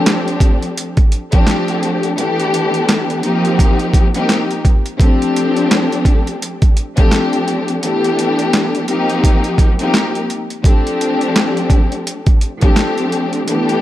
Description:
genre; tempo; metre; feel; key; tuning
hip hop, boom-bap hip-hop; 85 BPM; 4/4; swing 58% on 16ths; G minor; A4 = 440 Hz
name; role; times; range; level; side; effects
dark studio string section; accompaniment; 0.0-13.8 s; E3 to G4; -16 LUFS; left 1 dB; cassette tape, high-pass filter, low-pass filter
boom bap sampler-style drum kit; drums; 0.1-13.8 s; handclaps, hi-hat, kick drum, snare drum; -14 LUFS; equal; overdrive
room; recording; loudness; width
light reverb; none; -12 LUFS; side -14 dB against mid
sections
0.0-13.8 A section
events
none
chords
0.0 G9sus4; 2.2 A9sus4; 3.2 F9sus4; 5.0 G9sus4; 7.8 A9sus4; 8.9 F9sus4; 10.6 G9sus4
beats
0.06 0.76 1.47 | 2.17 2.88 3.58 4.29 | 5.00 5.70 6.41 7.12 | 7.82 8.53 9.23 9.94 | 10.64 11.35 12.06 12.76 | 13.47

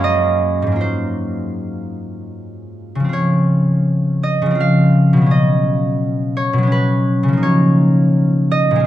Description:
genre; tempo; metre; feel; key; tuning
classical, solo harp piece; 75-86 BPM; 3/4; rubato; unclear; A4 = 436 Hz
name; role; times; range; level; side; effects
concert harp; solo; 0.0-8.9 s; Gb2 to F5; -14 LUFS; equal; none
room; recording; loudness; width
light reverb; dark, warm production; -13 LUFS; side -13 dB against mid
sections
0.0-8.9 A section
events
none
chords
0.0 Gb69; 0.8 Ab13; 3.1 Dbmaj7; 5.3 Cbadd9; 7.4 Db69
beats
0.03 | 0.79 1.57 2.36 | 3.13 3.88 4.61 | 5.32 6.03 6.73 | 7.43 8.15

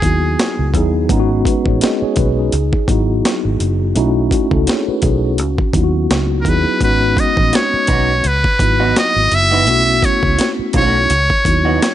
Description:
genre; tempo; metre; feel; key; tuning
R&B, neo-soul; 84 BPM; 4/4; swing 57% on 16ths; C# minor; A4 = 441 Hz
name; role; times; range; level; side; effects
trumpet with metal mute; melody; 0.0-0.7, 6.4-11.9 s; G#4 to E5; -15 LUFS; equal; none
mellow tine electric piano; accompaniment; 0.0-11.9 s; F#3 to D#5; -18 LUFS; left 1 dB; medium stereo tremolo
vintage muted fingered electric bass; bass; 0.0-11.8 s; F#1 to D#2; -18 LUFS; equal; none
boom bap sampler-style drum kit; drums; 0.0-11.9 s; hi-hat, kick drum, snare drum; -18 LUFS; equal; overdrive
electric guitar through a small old amp; second line; 7.5-11.8 s; E3 to F#4; -24 LUFS; right 6 dB; spring reverb
room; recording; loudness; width
light reverb, digital ambience; nothing above 10.8 kHz; -12 LUFS; side -12 dB against mid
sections
0.0-11.9 A section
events
none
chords
0.0 C#m11; 1.1 G#m7; 2.5 C#m11; 4.0 B9sus4; 5.4 C#m11; 6.8 G#m7; 8.2 C#m11; 9.7 B9sus4; 11.1 C#m11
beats
0.38 | 1.09 1.81 2.52 3.24 | 3.95 4.67 5.38 6.09 | 6.81 7.52 8.24 8.95 | 9.66 10.38 11.09 11.81

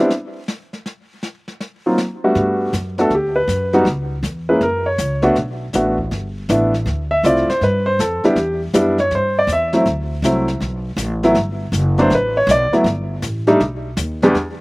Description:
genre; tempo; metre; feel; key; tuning
jazz piano trio; 160 BPM; 4/4; swing 66% on 8ths; G major; A4 = 441 Hz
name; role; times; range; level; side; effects
warm grand piano; melody; 0.0-14.3 s; E2 to E5; -15 LUFS; equal; none
upright bass; bass; 0.0-0.1, 2.4-14.6 s; F#1 to G2; -22 LUFS; equal; none
jazz brush drum kit; drums; 0.1-14.6 s; brushed snare drum, hi-hat, kick drum, snare drum; -26 LUFS; left 1 dB; none
room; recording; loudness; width
little or no reverb; recorded outdoors, with no room sound; -15 LUFS; side -26 dB against mid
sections
0.0-2.4 A section; 2.4-14.4 A section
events
grand piano solo 2.4-14.6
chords
0.0 N.C.; 2.4 Gmaj7; 3.9 C#m; 4.6 F#5; 5.4 Bm7; 6.9 Dm7; 7.6 G7; 8.4 C; 9.9 D7; 11.4 Gmaj7; 13.6 Baug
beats
0.11 0.49 | 0.86 1.24 1.61 1.99 | 2.36 2.74 3.11 3.49 | 3.86 4.24 4.61 4.99 | 5.36 5.74 6.11 6.49 | 6.86 7.24 7.61 7.99 | 8.36 8.74 9.11 9.48 | 9.86 10.23 10.61 10.98 | 11.36 11.73 12.10 12.48 | 12.85 13.23 13.60 13.98 | 14.35

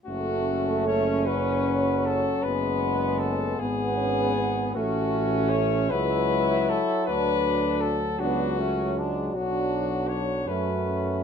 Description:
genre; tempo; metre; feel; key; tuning
classical, hymn-like piece for brass band; 52 BPM (dotted quarters); 6/8; uneven beats, rubato; F# minor; A4 = 439 Hz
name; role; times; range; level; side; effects
warm flugelhorn; melody; 0.1-11.2 s; F#4 to C#5; -28 LUFS; left 6 dB; none
warm French horn section; second line; 0.1-11.2 s; B3 to E4; -30 LUFS; right 1 dB; none
clear euphonium; accompaniment; 0.1-11.2 s; F#3 to B3; -30 LUFS; right 3 dB; none
warm euphonium; accompaniment; 0.1-11.2 s; F#3 to C#4; -32 LUFS; left 2 dB; none
mellow tuba; bass; 0.1-11.2 s; F#1 to F#2; -30 LUFS; right 2 dB; none
room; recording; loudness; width
moderate stone room reverb, RT60 1.0 s; minimal, uncompressed stereo recording; -23 LUFS; side -7 dB against mid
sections
0.1-11.2 A section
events
none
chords
0.1 F#m; 2.4 C#5/F#; 4.8 F#m/A; 7.1 D; 9.3 Bm; 10.5 F#m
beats
| 0.06 1.26 | 2.43 3.57 | 4.75 5.91 | 7.07 8.19 | 9.33 10.46

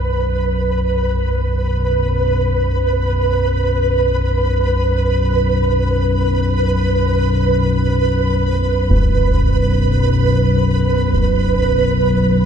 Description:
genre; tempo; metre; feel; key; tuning
dark ambient drone; free time; none; none; unclear; A4 = 441 Hz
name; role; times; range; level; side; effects
deep rumbling drone; drone; 0.0-12.5 s; B1 to F#2; -16 LUFS; equal; built-in reverb
flickering grainy texture; texture; 0.0-12.5 s; B4; -19 LUFS; right 3 dB; built-in reverb
concert bass drum; percussion; 8.9-11.4 s; none; -20 LUFS; equal; low-pass filter on kick
room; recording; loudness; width
moderate huge ambient reverb, RT60 8.4 s; lossy compression artefacts; -14 LUFS; side -8 dB against mid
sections
0.0-12.5 A section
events
none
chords
0.0 B5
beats
free time

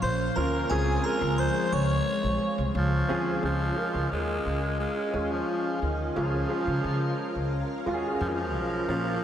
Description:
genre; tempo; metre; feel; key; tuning
pop; 88 BPM; 4/4; straight; Db major; A4 = 439 Hz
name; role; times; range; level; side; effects
raspy alto saxophone; melody; 0.0-9.2 s; Eb3 to Db5; -30 LUFS; equal; analog delay
glassy synth bell; second line; 0.0-3.1 s; Ab5 to Db6; -37 LUFS; left 1 dB; chorus, analog delay
warm concert grand piano; accompaniment; 0.0-9.2 s; F3 to Bb4; -31 LUFS; right 1 dB; tube saturation, ensemble chorus
ensemble organ-string; sustained chords; 0.0-9.2 s; Bb2 to F5; -33 LUFS; left 1 dB; ensemble chorus
upright bass; bass; 0.0-9.1 s; Bb1 to Db3; -30 LUFS; equal; none
room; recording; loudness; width
wet lush hall reverb, RT60 2.8 s; dreamy mix soaked in reverb; -25 LUFS; side -10 dB against mid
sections
0.0-3.4 A section; 3.4-9.2 B section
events
none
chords
0.0 Bbm; 0.7 Dbmaj7; 3.4 Db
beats
0.02 | 0.70 1.39 2.07 2.75 | 3.43 4.11 4.80 5.48 | 6.16 6.84 7.52 8.21 | 8.89

